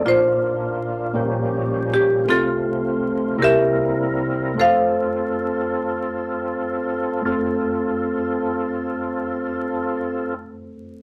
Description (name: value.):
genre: slow gospel.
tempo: 40-54 BPM (dotted quarters).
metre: 6/8.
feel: straight.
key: F major.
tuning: A4 = 440 Hz.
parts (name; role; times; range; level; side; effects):
marimba with hard mallets; melody; 0.0-6.3 s; C4 to F5; -21 LUFS; equal; none.
mellow tine electric piano; accompaniment; 0.0-11.0 s; Bb1 to D5; -29 LUFS; equal; none.
overdriven tonewheel organ; sustained chords; 0.0-10.3 s; C3 to Bb4; -26 LUFS; equal; slow rotary speaker, chorus vibrato.
room: moderate club reverb, RT60 0.7 s.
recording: vinyl crackle.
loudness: -21 LUFS.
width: mono.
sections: 0.0-7.2 A section; 7.2-10.3 B section.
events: slowing down 2.3-7.2.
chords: 0.0 Bb; 1.1 Bbm6; 2.3 F/C; 3.4 C7; 4.6 F.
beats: | 0.04 1.15 | 2.26 3.39 | 4.56 5.83 | 7.25 8.75.